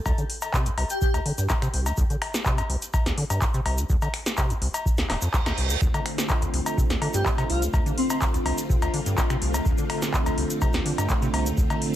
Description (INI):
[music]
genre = acid house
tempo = 125 BPM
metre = 4/4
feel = straight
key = D minor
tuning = A4 = 440 Hz
[part]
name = deep acid bass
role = riff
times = 0.1-11.8 s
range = D1 to D3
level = -28 LUFS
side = equal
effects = cassette tape, sidechain pumping
[part]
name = electro analog drum machine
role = drums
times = 0.1-11.9 s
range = cowbell, finger snaps, handclaps, hi-hat, snare drum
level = -28 LUFS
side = left 1 dB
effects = none
[part]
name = electronic kick drum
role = drums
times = 0.1-11.7 s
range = none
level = -25 LUFS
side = equal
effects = none
[part]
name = egg shaker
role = percussion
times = 0.1-11.8 s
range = none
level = -36 LUFS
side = right 2 dB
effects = none
[part]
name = airy dreamy lead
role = melody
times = 0.9-1.1, 7.1-8.2 s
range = C4 to G4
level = -31 LUFS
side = left 1 dB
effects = chorus, phaser, dub echo
[part]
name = reverse cymbal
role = sound effects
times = 5.2-5.8 s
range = none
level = -32 LUFS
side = right 6 dB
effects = none
[part]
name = string machine, full ensemble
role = sustained chords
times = 5.8-12.0 s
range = D3 to F4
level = -29 LUFS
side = right 1 dB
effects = phaser, ensemble chorus, sidechain pumping
[sound]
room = light reverb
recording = none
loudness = -22 LUFS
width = side -12 dB against mid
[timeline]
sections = 0.0-12.0 A section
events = reverse cymbal 5.2-5.8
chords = 0.0 Dm7